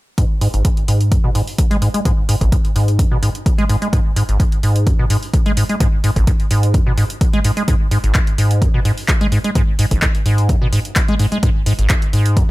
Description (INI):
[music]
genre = acid house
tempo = 128 BPM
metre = 4/4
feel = straight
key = G# minor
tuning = A4 = 439 Hz
[part]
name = acid bass, square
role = riff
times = 0.2-12.4 s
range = G#1 to G#3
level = -16 LUFS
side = equal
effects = overdrive, wide subtle chorus, tape echo
[part]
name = electronic kick drum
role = drums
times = 0.2-12.5 s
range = none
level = -16 LUFS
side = equal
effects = overdrive
[part]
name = punchy analog drum machine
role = drums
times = 0.2-12.5 s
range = handclaps, hi-hat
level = -24 LUFS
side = equal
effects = overdrive
[sound]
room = digital ambience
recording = none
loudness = -13 LUFS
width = side -19 dB against mid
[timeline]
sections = 0.2-12.5 A section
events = filter sweep on acid bass 0.2-12.5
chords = none